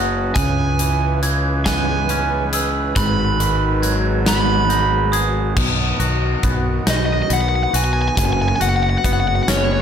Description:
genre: post-rock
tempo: 46 BPM (dotted quarters)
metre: 6/8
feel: straight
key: B major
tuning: A4 = 440 Hz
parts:
  - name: crunchy overdriven guitar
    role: melody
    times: 0.0-9.8 s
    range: C#5 to B5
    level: -21 LUFS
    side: right 2 dB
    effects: slapback echo
  - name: brassy analog pad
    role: sustained chords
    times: 0.0-9.8 s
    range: C#3 to B4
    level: -27 LUFS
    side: left 2 dB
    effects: chorus
  - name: glockenspiel with soft plastic mallets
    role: arpeggios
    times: 0.0-5.6 s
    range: D#6 to G#6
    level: -27 LUFS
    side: right 8 dB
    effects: slapback echo
  - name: twangy electric guitar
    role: arpeggios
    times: 0.0-9.8 s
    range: F#2 to G#4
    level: -26 LUFS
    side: left 3 dB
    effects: slapback echo
  - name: fuzz fingered electric bass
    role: bass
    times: 0.0-9.8 s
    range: F#1 to C#2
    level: -20 LUFS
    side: equal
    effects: overdrive
  - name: big rock drum kit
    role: drums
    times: 0.4-9.7 s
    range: crash cymbal, hi-hat, kick drum, snare drum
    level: -22 LUFS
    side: equal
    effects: none
room: light reverb, small room ambience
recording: none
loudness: -16 LUFS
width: side -8 dB against mid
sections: 0.0-5.6 A section; 5.6-9.8 B section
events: none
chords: 0.3 C#m7; 3.0 G#m7; 5.6 B; 8.2 F#sus4

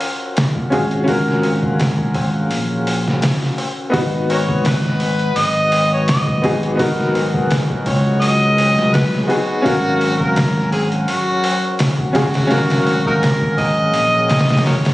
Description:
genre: trip hop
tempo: 84 BPM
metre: 4/4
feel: swing 54% on 16ths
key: G# dorian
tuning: A4 = 440 Hz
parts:
  - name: clear upright piano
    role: accompaniment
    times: 0.0-14.9 s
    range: B3 to E#5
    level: -20 LUFS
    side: left 1 dB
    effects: tremolo, tape echo
  - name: trip hop sampler-style drum kit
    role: drums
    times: 0.0-14.9 s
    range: hi-hat, kick drum, snare drum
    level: -20 LUFS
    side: equal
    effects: overdrive
  - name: tabla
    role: percussion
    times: 0.2-14.9 s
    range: none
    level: -31 LUFS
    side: left 3 dB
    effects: none
  - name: fingered electric bass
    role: bass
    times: 0.7-14.9 s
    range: G#1 to C#2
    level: -19 LUFS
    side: equal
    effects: none
  - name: bowed-like drone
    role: texture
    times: 5.7-14.9 s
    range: F#3 to F#4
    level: -28 LUFS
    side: left 1 dB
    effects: none
  - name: mellow harmonica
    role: melody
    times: 4.3-14.9 s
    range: D#4 to D#5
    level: -19 LUFS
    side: equal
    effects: tape echo
room: small room ambience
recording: recorded on a phone in the room, studio reverb, vinyl crackle, compression, nothing above 10.5 kHz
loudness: -14 LUFS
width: side -17 dB against mid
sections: 0.0-14.9 A section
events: kick drops out 13.9-14.9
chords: 0.0 G#13sus4; 3.9 G#m7; 9.6 D#m7/G#

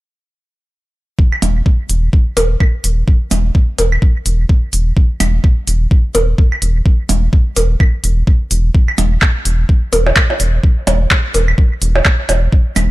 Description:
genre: minimal techno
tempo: 127 BPM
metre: 4/4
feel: swing 58% on 16ths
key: unclear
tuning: A4 = 435 Hz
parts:
  - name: electronic kick drum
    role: drums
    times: 1.2-12.6 s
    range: none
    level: -11 LUFS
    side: equal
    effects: small room ambience
  - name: claves and percussion blips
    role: percussion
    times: 1.3-12.9 s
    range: none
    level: -18 LUFS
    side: right 1 dB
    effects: small room ambience, dub echo
  - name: rubbery square bass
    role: bass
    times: 1.4-12.9 s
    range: E1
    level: -14 LUFS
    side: equal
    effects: sidechain pumping
  - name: minimal click drum kit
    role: drums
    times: 1.4-12.9 s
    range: handclaps, hi-hat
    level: -17 LUFS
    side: equal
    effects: overdrive, small room ambience
room: little or no reverb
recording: none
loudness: -11 LUFS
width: side -18 dB against mid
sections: 1.2-12.9 A section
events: none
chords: none

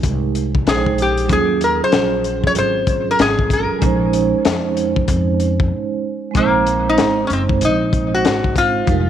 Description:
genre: hip hop, jazz-hop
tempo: 95 BPM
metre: 4/4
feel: swing 63% on 16ths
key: Bb minor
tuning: A4 = 444 Hz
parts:
  - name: vibraphone with soft mallets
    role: accompaniment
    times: 0.0-9.1 s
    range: Gb3 to G5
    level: -20 LUFS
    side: right 9 dB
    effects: none
  - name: upright bass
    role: bass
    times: 0.0-9.1 s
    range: F1 to F2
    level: -22 LUFS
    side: equal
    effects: none
  - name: crunchy breakbeat drum kit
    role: drums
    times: 0.0-9.1 s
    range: hi-hat, kick drum, snare drum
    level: -20 LUFS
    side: left 3 dB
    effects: none
  - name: metal-body resonator slide guitar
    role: melody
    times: 0.7-9.1 s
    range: Bb3 to Db5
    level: -18 LUFS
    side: left 3 dB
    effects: tape echo
room: light reverb, studio reverb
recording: 1960s-style stereo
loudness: -14 LUFS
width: side -10 dB against mid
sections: 0.0-6.3 A section; 6.3-9.1 B section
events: break 5.7-6.3; resonator guitar played with a steel bar solo 6.3-9.1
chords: 0.0 Fm11 (rootless); 1.3 Ebm11; 3.8 Bbm11; 6.3 Bb9sus4

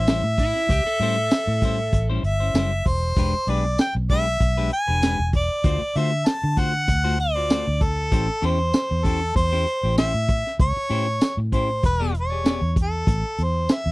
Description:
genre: straight-eighth soul blues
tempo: 97 BPM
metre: 4/4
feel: swing 54% on 16ths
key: unclear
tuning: A4 = 440 Hz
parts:
  - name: warm harmonica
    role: melody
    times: 0.0-13.9 s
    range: A4 to A5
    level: -24 LUFS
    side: equal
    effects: none
  - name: clean electric guitar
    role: stabs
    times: 0.0-12.8 s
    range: G3 to D5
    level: -29 LUFS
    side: left 4 dB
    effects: none
  - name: vintage muted fingered electric bass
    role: bass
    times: 0.0-13.9 s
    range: E1 to D3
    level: -23 LUFS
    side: equal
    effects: none
  - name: crunchy breakbeat drum kit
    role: drums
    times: 0.1-13.8 s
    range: hi-hat, kick drum, snare drum, tambourine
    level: -21 LUFS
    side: equal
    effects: none
  - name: overdriven slide guitar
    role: second line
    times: 0.4-2.1 s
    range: E4 to A4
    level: -30 LUFS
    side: right 5 dB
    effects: none
room: little or no reverb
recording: dry, close 1970s-style studio recording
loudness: -19 LUFS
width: side -21 dB against mid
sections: 0.0-13.1 A section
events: none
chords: 0.0 A7#9; 3.2 E7#9; 5.6 D7#9; 8.1 A7#9; 11.8 E7#9; 13.1 A5

